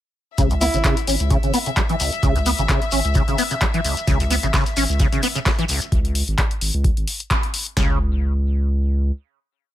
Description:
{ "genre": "acid house", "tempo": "130 BPM", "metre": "4/4", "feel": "swing 55% on 16ths", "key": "C# minor", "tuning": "A4 = 440 Hz", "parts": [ { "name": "warm chamber string section", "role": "sustained chords", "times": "0.4-5.9 s", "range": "E5", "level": "-29 LUFS", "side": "left 4 dB", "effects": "sidechain pumping" }, { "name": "acid bass, saw", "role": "riff", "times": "0.4-8.0 s", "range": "C#2 to C#4", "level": "-23 LUFS", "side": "equal", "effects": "overdrive, ensemble chorus, vintage 12-bit sampler grit, ping-pong delay" }, { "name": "saturated sub bass", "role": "bass", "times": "0.4-9.1 s", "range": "G#1 to C#2", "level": "-21 LUFS", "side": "equal", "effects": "sidechain pumping" }, { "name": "booming analog drum machine", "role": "drums", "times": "0.4-7.9 s", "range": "kick drum, snare drum", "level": "-21 LUFS", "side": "equal", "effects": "overdrive" }, { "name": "punchy analog drum machine", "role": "drums", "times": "0.4-7.7 s", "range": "handclaps, hi-hat", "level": "-24 LUFS", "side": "left 1 dB", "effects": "none" }, { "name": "shekere", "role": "percussion", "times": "0.4-5.9 s", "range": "none", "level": "-30 LUFS", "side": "left 4 dB", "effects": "none" }, { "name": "clear alto saxophone", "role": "melody", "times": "0.6-1.0 s", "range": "E4", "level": "-26 LUFS", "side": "right 1 dB", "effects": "ping-pong delay" }, { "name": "warm soul drum kit", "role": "drums", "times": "4.1-5.8 s", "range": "hi-hat, snare drum", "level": "-34 LUFS", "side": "right 3 dB", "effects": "high-pass filter on hats, high-pass filter on snare, high-pass filter on room" } ], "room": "little or no reverb", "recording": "none", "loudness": "-17 LUFS", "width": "side -13 dB against mid", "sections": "0.4-7.8 groove; 7.8-9.7 final note", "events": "filter sweep on acid bass 0.4-5.9; band accent 7.3", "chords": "0.4 C#m; 7.8 N.C." }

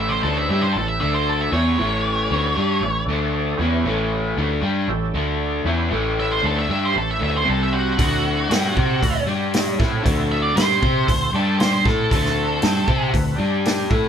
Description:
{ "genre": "blues rock power trio and southern rock", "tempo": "116 BPM", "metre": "4/4", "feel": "straight", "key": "unclear", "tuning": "A4 = 440 Hz", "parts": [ { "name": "octave-fuzz lead guitar", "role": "melody", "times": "0.0-3.0, 6.2-13.1 s", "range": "F#4 to E5", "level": "-23 LUFS", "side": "right 2 dB", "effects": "distortion, analog delay" }, { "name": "overdriven tonewheel organ", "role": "sustained chords", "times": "0.0-14.1 s", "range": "G3 to D5", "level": "-30 LUFS", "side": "right 4 dB", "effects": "slow rotary speaker, chorus vibrato" }, { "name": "crunchy overdriven guitar", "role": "riff", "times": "0.0-14.1 s", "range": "A2 to C5", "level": "-22 LUFS", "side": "left 2 dB", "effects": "none" }, { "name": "vintage muted fingered electric bass", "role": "bass", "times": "0.0-14.1 s", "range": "A1 to C3", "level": "-24 LUFS", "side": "equal", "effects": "none" }, { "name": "vintage drum kit", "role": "drums", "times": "8.0-14.0 s", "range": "hi-hat, kick drum, snare drum", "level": "-22 LUFS", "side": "equal", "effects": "none" } ], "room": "light reverb", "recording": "band playing live in one room", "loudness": "-18 LUFS", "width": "side -8 dB against mid", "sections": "0.0-14.1 A section", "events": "none", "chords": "0.0 A7; 1.0 D5; 1.5 A7; 3.1 D5; 3.6 A7; 5.1 D5; 5.7 A7; 7.5 C5; 8.0 D7; 9.3 G5; 9.8 D7; 11.3 G5; 11.8 D7; 13.4 G5" }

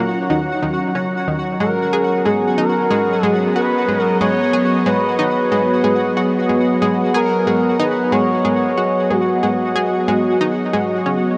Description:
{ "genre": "ambient, sequencer-driven space music", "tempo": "92 BPM", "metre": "4/4", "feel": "straight", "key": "unclear", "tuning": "A4 = 438 Hz", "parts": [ { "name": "expressive synth lead", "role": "melody", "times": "0.0-11.1 s", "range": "Gb4 to Db5", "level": "-22 LUFS", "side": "equal", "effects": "chorus, analog delay" }, { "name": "sweeping resonant pad", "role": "sustained chords", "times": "0.0-11.4 s", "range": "Gb3 to Bb5", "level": "-21 LUFS", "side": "equal", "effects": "chorus" }, { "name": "analog pluck", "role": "riff", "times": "0.0-11.2 s", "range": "Eb3 to Ab4", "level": "-24 LUFS", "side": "equal", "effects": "chorus, cassette tape, analog delay" }, { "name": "pulsing gated texture", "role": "texture", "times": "0.0-11.4 s", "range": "Gb4 to Gb5", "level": "-29 LUFS", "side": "equal", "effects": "chorus, built-in reverb" } ], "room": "wet huge ambient reverb, RT60 7.6 s", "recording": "cassette tape", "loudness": "-17 LUFS", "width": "mono", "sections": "0.0-11.4 A section", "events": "none", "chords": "0.0 Ebm7; 1.6 Abm7" }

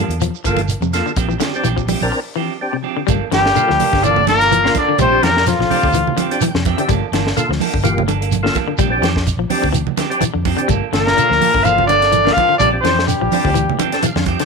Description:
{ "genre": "afrobeat", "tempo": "126 BPM", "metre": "4/4", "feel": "swing 55% on 16ths", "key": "G dorian", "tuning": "A4 = 440 Hz", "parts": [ { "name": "percussive tonewheel organ", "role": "accompaniment", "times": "0.0-14.4 s", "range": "Bb3 to G5", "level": "-22 LUFS", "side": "equal", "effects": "overdrive, chorus vibrato, slow rotary speaker" }, { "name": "semi-hollow electric guitar", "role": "arpeggios", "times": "0.0-14.4 s", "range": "C3 to G3", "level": "-23 LUFS", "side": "left 13 dB", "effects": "none" }, { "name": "semi-hollow electric guitar", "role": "stabs", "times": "0.0-14.4 s", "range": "F3 to A4", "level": "-25 LUFS", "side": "right 12 dB", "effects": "none" }, { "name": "fingered electric bass", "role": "bass", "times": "0.1-14.3 s", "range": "G1 to F2", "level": "-21 LUFS", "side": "equal", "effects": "none" }, { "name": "tight funk drum kit", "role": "drums", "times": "0.1-14.4 s", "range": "hi-hat, kick drum, snare drum", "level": "-23 LUFS", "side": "left 1 dB", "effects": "none" }, { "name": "shekere", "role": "percussion", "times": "0.1-14.4 s", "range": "none", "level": "-23 LUFS", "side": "right 8 dB", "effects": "none" }, { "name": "congas", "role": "percussion", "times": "0.6-14.4 s", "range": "none", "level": "-22 LUFS", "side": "right 12 dB", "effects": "none" }, { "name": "warm trumpet", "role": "melody", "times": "3.3-6.4, 10.9-14.0 s", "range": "F4 to F5", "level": "-14 LUFS", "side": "left 2 dB", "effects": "none" }, { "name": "bright trombone", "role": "second line", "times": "3.3-6.4, 10.9-14.0 s", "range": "F3 to F4", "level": "-26 LUFS", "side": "right 10 dB", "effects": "none" }, { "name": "bright trombone section", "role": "second line", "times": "3.3-6.4, 10.9-14.0 s", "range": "F2 to F3", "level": "-25 LUFS", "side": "left 12 dB", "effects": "none" } ], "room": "moderate spring reverb, RT60 1.2 s, small room ambience", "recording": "1960s-style stereo with parts hard left and right", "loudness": "-13 LUFS", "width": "side -4 dB against mid", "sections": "0.0-3.1 A section; 3.1-14.4 B section", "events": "break 2.1-3.1; tonewheel organ fill 6.2-6.9, 13.8-14.4", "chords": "0.0 Gm9; 1.2 Bb69; 3.1 Gm9; 5.0 Bb69; 6.9 Gm9; 8.8 Bb69; 10.7 Gm9; 12.6 Bb69" }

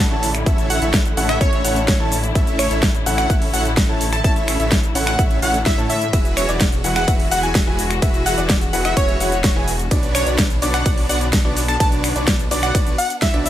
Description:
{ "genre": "EDM, festival progressive house", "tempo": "127 BPM", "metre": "4/4", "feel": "straight", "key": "A major", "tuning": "A4 = 440 Hz", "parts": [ { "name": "muted studio string section", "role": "sustained chords", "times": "0.0-13.5 s", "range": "D3 to F#4", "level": "-28 LUFS", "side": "left 2 dB", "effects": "sidechain pumping" }, { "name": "wide detuned saw bass", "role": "bass", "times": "0.0-13.5 s", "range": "E1 to A2", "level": "-24 LUFS", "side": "equal", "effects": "chorus, sidechain pumping" }, { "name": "big-room dance drum kit", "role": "drums", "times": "0.0-13.5 s", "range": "cabasa, finger snaps, hi-hat, ride cymbal, snare drum", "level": "-23 LUFS", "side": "equal", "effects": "none" }, { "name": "warm grand piano", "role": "arpeggios", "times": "0.1-13.5 s", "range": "D4 to A5", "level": "-27 LUFS", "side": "left 1 dB", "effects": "sidechain pumping, tape echo" }, { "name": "dense compressed supersaw", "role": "riff", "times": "0.1-13.5 s", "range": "C#4 to A5", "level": "-25 LUFS", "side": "right 1 dB", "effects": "sidechain pumping, tape echo" }, { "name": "electronic kick drum", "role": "drums", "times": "0.5-13.3 s", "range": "none", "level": "-18 LUFS", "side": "equal", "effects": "none" }, { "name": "plucky unison lead", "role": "melody", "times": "0.7-13.5 s", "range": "C#5 to A5", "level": "-24 LUFS", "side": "equal", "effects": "tape echo" } ], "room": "light reverb", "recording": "none", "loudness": "-15 LUFS", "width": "side -12 dB against mid", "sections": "0.0-13.5 A section", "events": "none", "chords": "0.0 A; 6.1 Eadd9; 9.9 Bmadd9" }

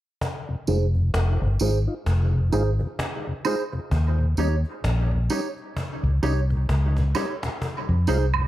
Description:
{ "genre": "dub reggae", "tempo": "65 BPM", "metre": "4/4", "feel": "swing 57% on 16ths", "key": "F minor", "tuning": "A4 = 439 Hz", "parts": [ { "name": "cajon", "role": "drums", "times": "0.2-8.4 s", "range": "none", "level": "-31 LUFS", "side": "left 1 dB", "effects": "none" }, { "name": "mellow tonewheel organ", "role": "accompaniment", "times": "0.5-8.4 s", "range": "Eb2 to F4", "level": "-32 LUFS", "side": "left 2 dB", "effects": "slow rotary speaker, low-pass filter, dub echo" }, { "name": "mellow electric guitar", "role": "accompaniment", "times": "0.7-8.2 s", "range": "Eb4 to Db5", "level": "-29 LUFS", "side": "right 3 dB", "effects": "low-pass filter, dub echo" }, { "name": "vintage muted fingered electric bass", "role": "bass", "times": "0.7-8.5 s", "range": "F1 to F2", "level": "-21 LUFS", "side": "equal", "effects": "none" }, { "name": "tambourine and woodblock", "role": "percussion", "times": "0.7-8.5 s", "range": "none", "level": "-33 LUFS", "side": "right 8 dB", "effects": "dub echo" } ], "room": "small room ambience", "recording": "none", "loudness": "-21 LUFS", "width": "side -14 dB against mid", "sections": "0.2-7.6 A section", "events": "filter sweep 0.2-7.6; drum fill 6.7-7.6", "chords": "0.2 Fm7; 3.9 Eb7; 7.6 Fm7" }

